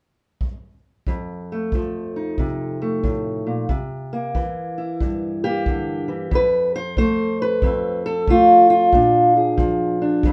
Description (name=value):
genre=acoustic country blues, solo or duo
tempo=92 BPM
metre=4/4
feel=swing 64% on 8ths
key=unclear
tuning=A4 = 444 Hz
part: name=kick drum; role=drums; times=0.4-10.3 s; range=none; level=-26 LUFS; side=equal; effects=none
part: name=fingerpicked steel-string acoustic guitar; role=melody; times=1.1-10.3 s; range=F2 to C5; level=-20 LUFS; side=equal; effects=none
room=light reverb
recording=none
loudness=-20 LUFS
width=mono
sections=0.0-1.1 A section; 1.1-6.3 B section; 6.3-10.3 C section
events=none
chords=0.0 N.C.; 1.1 F7; 3.7 C7; 6.3 F; 8.9 Bb7